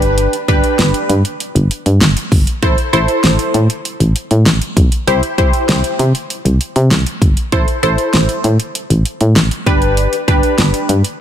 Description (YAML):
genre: synth-pop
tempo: 98 BPM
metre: 4/4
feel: straight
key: G major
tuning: A4 = 441 Hz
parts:
  - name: funky polysynth comp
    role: accompaniment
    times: 0.0-10.9 s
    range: D4 to C5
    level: -16 LUFS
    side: equal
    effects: chorus
  - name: solid FM bass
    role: bass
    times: 0.0-11.0 s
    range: G1 to C3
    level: -13 LUFS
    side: equal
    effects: none
  - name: pop drum kit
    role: drums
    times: 0.0-11.2 s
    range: hi-hat, kick drum, snare drum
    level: -16 LUFS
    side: equal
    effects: none
room: light reverb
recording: dense, heavily limited modern master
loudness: -11 LUFS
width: side -10 dB against mid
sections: 0.0-11.2 A section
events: none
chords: 0.0 G; 2.6 Am; 5.1 C; 7.5 Am; 9.7 G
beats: | 0.18 0.79 1.40 2.01 | 2.62 3.24 3.85 4.46 | 5.07 5.69 6.30 6.91 | 7.52 8.14 8.75 9.36 | 9.97 10.59